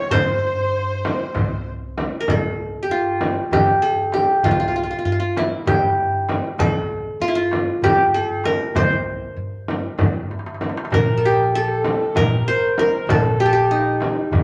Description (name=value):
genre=Turkish makam ensemble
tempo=194 BPM (eighths)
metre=7/8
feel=straight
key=C makam hicaz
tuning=A4 = 440 Hz
part: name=qanun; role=melody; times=0.0-14.4 s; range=Eb4 to Db5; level=-22 LUFS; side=equal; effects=none
part: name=warm studio violin section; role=second line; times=0.0-1.7 s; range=C5 to Db5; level=-28 LUFS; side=equal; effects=none
part: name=dark kamancheh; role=second line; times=0.1-1.7, 10.9-14.4 s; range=Eb4 to Db5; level=-28 LUFS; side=equal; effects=none
part: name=upright bass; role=bass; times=0.1-14.4 s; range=Bb1 to G2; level=-29 LUFS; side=equal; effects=none
part: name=darbuka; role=percussion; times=0.1-14.4 s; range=none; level=-29 LUFS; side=equal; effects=none
part: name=frame drum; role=percussion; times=0.1-14.4 s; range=none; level=-26 LUFS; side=equal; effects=none
room=wet club reverb, RT60 0.8 s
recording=none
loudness=-20 LUFS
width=mono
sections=0.0-2.3 A section; 2.3-10.9 B section; 10.9-14.4 C section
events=drum fill 10.3-10.9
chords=none